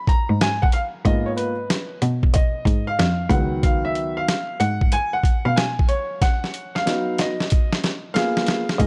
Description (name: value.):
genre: hip hop, jazz-hop.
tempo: 93 BPM.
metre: 4/4.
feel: swing 65% on 16ths.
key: G# dorian.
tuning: A4 = 439 Hz.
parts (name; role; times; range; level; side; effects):
warm upright piano; accompaniment; 0.0-8.9 s; D#3 to A#5; -26 LUFS; equal; none.
boom bap sampler-style drum kit; drums; 0.1-8.9 s; hi-hat, kick drum, snare drum; -22 LUFS; equal; none.
rich cello; bass; 0.3-8.9 s; C#2 to B2; -26 LUFS; equal; none.
room: studio reverb.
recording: dark, warm production.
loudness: -21 LUFS.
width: mono.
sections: 0.0-8.8 A section.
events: upright piano solo 0.0-8.8; drum fill 6.2-8.8.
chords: 0.0 G#m69; 3.3 C#9sus4; 8.2 G#m69.